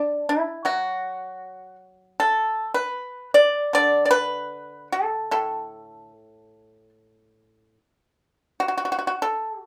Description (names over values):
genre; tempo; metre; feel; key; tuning
chinese traditional, Chinese solo plucked strings; 70-80 BPM; 4/4; rubato; D gong mode; A4 = 440 Hz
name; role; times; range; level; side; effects
pipa; solo; 0.0-9.7 s; A2 to D5; -23 LUFS; equal; none
room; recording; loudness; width
light reverb; rough home demo mix; -23 LUFS; mono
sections
0.0-9.7 A section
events
none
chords
none